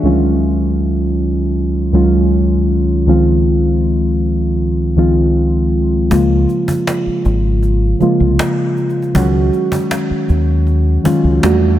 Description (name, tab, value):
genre	contemporary R&B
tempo	79 BPM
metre	4/4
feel	straight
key	Db major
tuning	A4 = 440 Hz
part	muted felt-like synth keys	accompaniment	0.0-11.8 s	Db2 to Gb4	-13 LUFS	equal	chorus
part	deep dub fingered electric bass	bass	6.1-11.8 s	Ab1 to E2	-14 LUFS	equal	none
part	cajon	drums	6.1-11.6 s	none	-22 LUFS	equal	none
room	moderate plate reverb, RT60 2.8 s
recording	none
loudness	-12 LUFS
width	side -12 dB against mid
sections	0.0-11.8 A section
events	none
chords	0.0 Ebm11/Db; 3.1 Fm7/Db; 6.1 Db6; 9.2 Ab7sus4/Db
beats	| 0.04 0.80 1.56 2.31 | 3.08 3.83 4.59 5.35 | 6.11 6.87 7.63 8.39 | 9.15 9.91 10.67 11.43